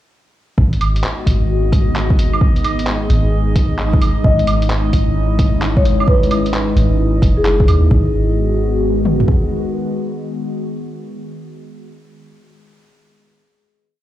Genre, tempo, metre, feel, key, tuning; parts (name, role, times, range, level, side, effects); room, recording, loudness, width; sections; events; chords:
future garage; 131 BPM; 4/4; swing 65% on 16ths; G# minor; A4 = 442 Hz
warbly tape-like pad; sustained chords; 1.0-11.6 s; D#3 to G#4; -21 LUFS; left 1 dB; chorus, built-in reverb, phaser, sidechain pumping
soft 808-style bass; bass; 0.6-9.2 s; F#1 to D#2; -17 LUFS; equal; sidechain pumping
organic electronic drum kit; drums; 0.6-9.4 s; kick drum, toms; -15 LUFS; equal; overdrive, studio reverb
drifting glass-harmonics texture; texture; 0.9-7.9 s; D#5; -31 LUFS; right 4 dB; chorus, built-in reverb
lo-fi sampler-style drum kit; drums; 0.7-7.8 s; claves, handclaps, hi-hat; -24 LUFS; right 2 dB; studio reverb
marimba with soft mallets; melody; 4.2-7.5 s; G#4 to D#5; -22 LUFS; left 2 dB; tape echo
light reverb, digital ambience; played on a big sound system in a bare room, cassette tape, large studio reverb; -13 LUFS; side -13 dB against mid
0.6-7.9 groove; 7.9-11.6 final chord
0.6 G#m7; 4.2 C#madd9/G#; 7.9 G#m7